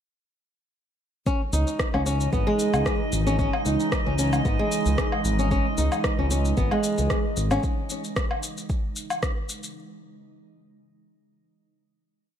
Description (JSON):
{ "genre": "organic downtempo", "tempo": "113 BPM", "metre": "4/4", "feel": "swing 54% on 16ths", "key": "C# minor", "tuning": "A4 = 440 Hz", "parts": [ { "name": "airy breathy pad", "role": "sustained chords", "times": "1.3-9.7 s", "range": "C#3 to D#4", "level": "-32 LUFS", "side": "right 2 dB", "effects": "chorus, sidechain pumping" }, { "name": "flamenco guitar", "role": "arpeggios", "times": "1.3-7.6 s", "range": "G#3 to D#4", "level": "-27 LUFS", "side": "equal", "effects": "ping-pong delay" }, { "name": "electronic kick drum", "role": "drums", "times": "1.3-9.3 s", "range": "none", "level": "-27 LUFS", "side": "equal", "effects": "overdrive" }, { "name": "electronic shaker, rim click and woodblock", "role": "drums", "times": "1.3-9.7 s", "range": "none", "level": "-30 LUFS", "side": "left 2 dB", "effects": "overdrive" }, { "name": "drifting glass-harmonics texture", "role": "texture", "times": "2.0-7.6 s", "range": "D#5", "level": "-35 LUFS", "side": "right 1 dB", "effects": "chorus, built-in reverb" }, { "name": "smooth gliding synth bass", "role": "bass", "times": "1.5-7.6 s", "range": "G#1 to C#2", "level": "-24 LUFS", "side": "equal", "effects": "sidechain pumping" } ], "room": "light reverb", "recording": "none", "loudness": "-22 LUFS", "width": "side -9 dB against mid", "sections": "1.3-9.8 groove", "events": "none", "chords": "1.3 C#madd9" }